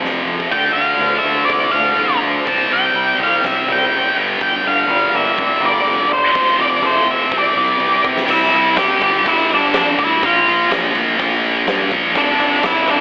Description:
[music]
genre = quiet-loud alternative rock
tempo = 124 BPM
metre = 4/4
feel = straight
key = G dorian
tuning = A4 = 435 Hz
[part]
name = twangy electric guitar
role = arpeggios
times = 0.0-8.3 s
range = G2 to C4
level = -23 LUFS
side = equal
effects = phaser, slapback echo
[part]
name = scooped high-gain guitar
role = riff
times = 0.0-13.0 s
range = F2 to D4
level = -17 LUFS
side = equal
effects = distortion, slapback echo
[part]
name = fuzz fingered electric bass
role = bass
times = 0.0-13.0 s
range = F1 to C3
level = -24 LUFS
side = equal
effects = overdrive
[part]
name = huge arena drum kit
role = drums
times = 0.0-13.0 s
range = crash cymbal, hi-hat, kick drum, snare drum, toms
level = -25 LUFS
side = equal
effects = none
[part]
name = octave-fuzz lead guitar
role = melody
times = 0.5-13.0 s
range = D4 to A5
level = -15 LUFS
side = equal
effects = distortion, slapback echo
[sound]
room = wet lush hall reverb, RT60 1.7 s, small room ambience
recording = big arena sound, telephone sound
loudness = -12 LUFS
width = side -33 dB against mid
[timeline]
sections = 0.0-8.3 A section; 8.3-13.0 B section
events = half time 0.0-8.3; drum fill 0.0-0.5, 7.3-8.3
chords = 0.0 F; 0.5 Dm; 2.5 C5; 4.2 Gm; 6.3 F; 7.3 Cadd9; 8.3 C; 9.0 G5; 10.2 Bb5; 12.2 F5

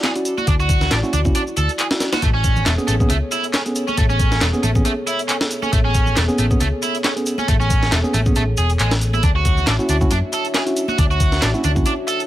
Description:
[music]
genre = breakbeat, breaks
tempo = 137 BPM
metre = 4/4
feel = swing 56% on 16ths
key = A major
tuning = A4 = 440 Hz
[part]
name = dark analog pad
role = sustained chords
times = 0.0-12.3 s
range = B3 to E5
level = -27 LUFS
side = left 1 dB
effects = chorus, sidechain pumping
[part]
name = biting overdriven guitar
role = riff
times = 0.0-12.2 s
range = G#3 to A4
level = -22 LUFS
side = right 2 dB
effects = tape echo
[part]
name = breakbeat sampler-style drum kit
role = drums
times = 0.0-12.3 s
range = hi-hat, kick drum, snare drum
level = -20 LUFS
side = equal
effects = none
[part]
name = electronic handclaps and shaker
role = drums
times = 0.0-12.3 s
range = none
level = -27 LUFS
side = equal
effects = none
[part]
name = mellow tine electric piano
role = stabs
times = 0.2-11.9 s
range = B3 to G#4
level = -25 LUFS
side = right 1 dB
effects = tape echo
[part]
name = congas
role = percussion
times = 0.4-11.8 s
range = none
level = -31 LUFS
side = right 2 dB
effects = none
[part]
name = hollow-body short-scale picked electric bass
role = bass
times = 0.5-11.8 s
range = E1 to F#2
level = -19 LUFS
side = equal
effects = tube saturation
[sound]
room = light reverb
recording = none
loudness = -16 LUFS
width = side -14 dB against mid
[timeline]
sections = 0.0-12.3 A section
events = none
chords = 0.0 Dmaj9; 2.2 Amaj9; 9.2 Dmaj9

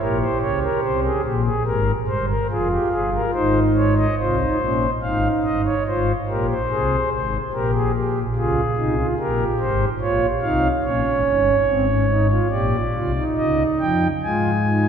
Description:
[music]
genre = classical, baroque-style 3-part fugue for pipe organ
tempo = 72 BPM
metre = 4/4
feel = straight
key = F minor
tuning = A4 = 443 Hz
[part]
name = pipe organ, principal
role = solo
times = 0.0-14.9 s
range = F1 to Ab5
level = -18 LUFS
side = equal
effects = none
[sound]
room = wet church reverb, RT60 3.5 s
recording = heard from further back in the room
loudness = -18 LUFS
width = side -7 dB against mid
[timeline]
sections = 0.0-4.2 A section; 4.2-14.9 B section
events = none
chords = 0.0 Edim7 (rootless); 0.8 C5; 2.5 Fm; 4.2 Ab; 5.9 Fm/Ab; 7.5 Bbm; 9.2 Gdim; 10.8 Bbm; 12.5 Bb; 13.4 Eb7/Db; 14.2 Ab5

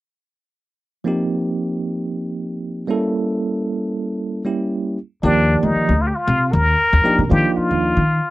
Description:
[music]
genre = electric jazz fusion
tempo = 116 BPM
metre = 4/4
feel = straight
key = Eb lydian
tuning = A4 = 440 Hz
[part]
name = bell-like tine electric piano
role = accompaniment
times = 1.0-8.0 s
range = Eb3 to D5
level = -20 LUFS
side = right 1 dB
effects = medium stereo tremolo
[part]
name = trumpet with plunger mute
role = melody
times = 5.2-8.3 s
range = D4 to Bb4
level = -18 LUFS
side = left 1 dB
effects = none
[part]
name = upright bass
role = bass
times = 5.2-8.2 s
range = D2 to Eb3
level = -18 LUFS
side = left 1 dB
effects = none
[sound]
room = little or no reverb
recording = dry, close 1970s-style studio recording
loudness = -17 LUFS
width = side -18 dB against mid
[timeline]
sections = 1.1-5.2 A section; 5.2-8.3 B section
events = none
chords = 1.1 Eb69; 2.9 A7b9; 5.0 N.C.; 5.2 Ebmaj9

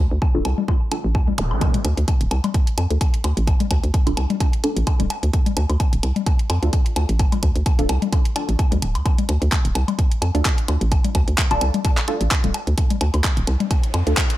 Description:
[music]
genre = minimal techno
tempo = 129 BPM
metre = 4/4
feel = swing 55% on 16ths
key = D minor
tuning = A4 = 440 Hz
[part]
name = hollow knocking FM bass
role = bass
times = 0.0-14.1 s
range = D1 to F2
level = -20 LUFS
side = equal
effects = sidechain pumping
[part]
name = electronic kick drum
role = drums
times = 0.2-14.3 s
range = none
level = -19 LUFS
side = equal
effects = studio reverb
[part]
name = woodblock and congas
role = percussion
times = 0.2-14.3 s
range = none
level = -27 LUFS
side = left 5 dB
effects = studio reverb, analog delay
[part]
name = filtered dub chord stab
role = stabs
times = 0.3-14.1 s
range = D4 to A4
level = -27 LUFS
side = right 1 dB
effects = phaser, analog chorus, cassette tape, analog delay
[part]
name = garage drum kit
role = drums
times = 0.5-14.4 s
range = handclaps, hi-hat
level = -26 LUFS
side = right 1 dB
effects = overdrive, studio reverb
[part]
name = zap and riser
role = sound effects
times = 1.4-1.5, 13.4-14.4 s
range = none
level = -29 LUFS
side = right 1 dB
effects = none
[sound]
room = digital ambience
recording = none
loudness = -17 LUFS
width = side -15 dB against mid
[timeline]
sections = 0.0-14.4 A section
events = riser 13.4-14.4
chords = 0.0 Dm

